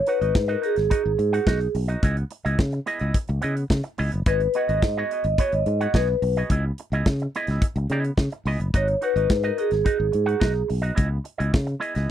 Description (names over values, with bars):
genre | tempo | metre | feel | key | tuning
disco | 107 BPM | 4/4 | straight | unclear | A4 = 440 Hz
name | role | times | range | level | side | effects
vibraphone with soft mallets | melody | 0.0-10.7 s | G#4 to D#5 | -23 LUFS | right 1 dB | none
electric guitar with an envelope filter | accompaniment | 0.1-12.1 s | B3 to F#5 | -30 LUFS | right 3 dB | none
modern studio drum kit | drums | 0.1-12.1 s | hi-hat, kick drum, snare drum | -21 LUFS | equal | none
fingered electric bass | bass | 0.2-12.1 s | F#1 to C#3 | -24 LUFS | equal | none
room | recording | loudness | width
little or no reverb | dry, close 1970s-style studio recording | -21 LUFS | side -11 dB against mid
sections
0.0-12.1 A section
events
none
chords
0.0 G#m7; 2.0 C#m9; 4.3 G#m7; 6.5 C#m9; 8.7 G#m7; 11.0 C#m9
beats
0.35 0.91 1.47 | 2.03 2.59 3.15 3.70 | 4.26 4.82 5.38 5.94 | 6.50 7.06 7.62 8.18 | 8.74 9.30 9.86 10.42 | 10.98 11.54 12.10